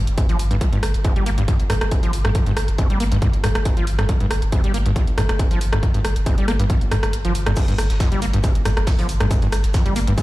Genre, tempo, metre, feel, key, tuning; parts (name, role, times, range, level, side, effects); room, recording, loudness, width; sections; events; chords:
driving peak-time techno; 138 BPM; 4/4; straight; G minor; A4 = 440 Hz
warm sub bass; bass; 0.0-10.2 s; G1; -22 LUFS; equal; overdrive, sidechain pumping, low-pass filter
techno drum kit; drums; 0.1-10.2 s; crash cymbal, hi-hat, rim click; -27 LUFS; equal; overdrive, sidechain pumping on hats, sidechain pumping on cymbals
electronic kick drum; drums; 0.2-10.2 s; -20 LUFS; equal; distortion, overdrive
overdriven acid bass; riff; 0.3-10.2 s; F2 to Bb3; -23 LUFS; equal; analog chorus, sidechain pumping, dub echo
vintage brush drum kit; drums; 7.6-10.2 s; hi-hat, shaker, snare drum; -36 LUFS; right 1 dB; sidechain pumping on hats, high-pass filter on hats, high-pass filter on snare, sidechain pumping on perc, high-pass filter on perc, high-pass filter on room
light reverb; played on a big sound system in a bare room, large studio reverb; -17 LUFS; side -18 dB against mid
0.0-10.2 A section
kick drops out 7.1-7.6